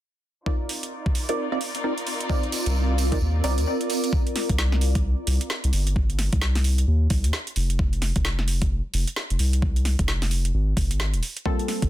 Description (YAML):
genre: UK garage, two-step garage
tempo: 131 BPM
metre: 4/4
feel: swing 61% on 16ths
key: C minor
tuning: A4 = 440 Hz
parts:
  - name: clear studio violin section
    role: sustained chords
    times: 0.5-4.1 s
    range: Eb4 to D5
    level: -35 LUFS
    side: left 2 dB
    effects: sidechain pumping, low-pass filter
  - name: punchy chord stab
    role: stabs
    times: 0.5-3.5, 11.5-11.9 s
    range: G3 to D5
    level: -29 LUFS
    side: right 1 dB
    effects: chorus, ping-pong delay
  - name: electronic kick drum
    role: drums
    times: 0.5-11.9 s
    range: none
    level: -24 LUFS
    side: equal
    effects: overdrive
  - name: granular cloud pad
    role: texture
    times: 1.8-4.1 s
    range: C4 to D5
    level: -30 LUFS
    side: right 1 dB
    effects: built-in reverb, sidechain pumping
  - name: garage drum kit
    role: drums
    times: 0.7-11.9 s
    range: hi-hat, snare drum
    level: -29 LUFS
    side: right 1 dB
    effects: overdrive
  - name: tambourine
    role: percussion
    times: 2.3-4.1 s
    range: none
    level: -35 LUFS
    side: right 5 dB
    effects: none
  - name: soft dub sub bass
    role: bass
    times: 2.7-11.9 s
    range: Eb1 to Eb2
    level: -22 LUFS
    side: equal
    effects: none
room: little or no reverb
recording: dense, heavily limited modern master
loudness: -21 LUFS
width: side -14 dB against mid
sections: 0.5-4.1 A section; 4.1-11.9 B section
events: fade-in on ambient pad 0.5-4.1; filter sweep on violin section 0.5-4.1; kick drops out 3.7-4.1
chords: 0.5 Cm11; 4.1 C5; 7.6 F5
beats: | 0.46 0.92 1.38 1.84 | 2.29 2.75 3.21 3.67 | 4.13 4.58 5.04 5.50 | 5.96 6.42 6.88 7.33 | 7.79 8.25 8.71 9.16 | 9.62 10.08 10.54 11.00 | 11.46